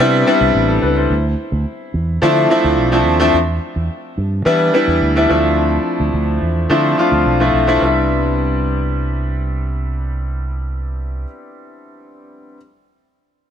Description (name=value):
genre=polished 1980s jazz-funk pop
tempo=107 BPM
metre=4/4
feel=straight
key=C major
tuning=A4 = 440 Hz
part: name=clear concert grand piano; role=accompaniment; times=0.0-12.6 s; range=E3 to C5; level=-15 LUFS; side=left 1 dB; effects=wide subtle chorus
part: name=fingered electric bass with an envelope filter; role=bass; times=0.0-11.2 s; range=A1 to E3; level=-18 LUFS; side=right 1 dB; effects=none
room=light reverb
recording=none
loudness=-14 LUFS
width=side -8 dB against mid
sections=0.0-7.8 A section; 7.8-10.1 B section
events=none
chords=0.0 Cmaj7; 1.1 Dm7; 3.3 Em7; 5.3 Dm7; 7.8 Cmaj7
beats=0.55 | 1.10 1.66 2.22 2.78 | 3.34 3.90 4.46 5.02 | 5.58 6.14 6.70 7.26 | 7.82 8.38 8.94 9.50